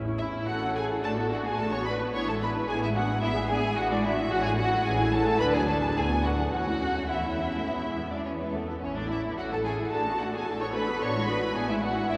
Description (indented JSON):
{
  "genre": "quick classical-period movement for string orchestra",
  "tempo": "109 BPM",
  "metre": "4/4",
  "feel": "rubato",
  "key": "A major",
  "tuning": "A4 = 440 Hz",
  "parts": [
    { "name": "muted studio viola section", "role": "accompaniment", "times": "0.0-12.2 s", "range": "D3 to F#4", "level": "-34 LUFS", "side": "equal", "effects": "none" },
    { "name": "muted studio cello section", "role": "bass", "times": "0.0-12.2 s", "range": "B3 to A4", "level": "-36 LUFS", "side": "equal", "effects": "none" },
    { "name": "muted studio double bass section", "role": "bass", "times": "0.0-12.2 s", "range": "A1 to E2", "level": "-36 LUFS", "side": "equal", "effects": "none" },
    { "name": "muted studio violin section", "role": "melody", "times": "0.2-12.1 s", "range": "A4 to C#6", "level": "-34 LUFS", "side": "equal", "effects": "none" },
    { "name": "muted chamber violin section", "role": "second line", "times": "0.2-12.2 s", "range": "A3 to C#5", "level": "-33 LUFS", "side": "equal", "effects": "none" }
  ],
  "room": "wet cathedral reverb, RT60 5.1 s",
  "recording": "recorded in a church or concert hall",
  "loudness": "-28 LUFS",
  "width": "mono",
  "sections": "0.0-12.2 A section",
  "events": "none",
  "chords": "0.0 A; 1.0 Bm7/A; 2.1 E7/A; 4.3 A; 5.4 Bm/D; 6.5 A/E; 7.7 E; 8.8 A; 9.9 Bm7/A; 11.0 E7/A"
}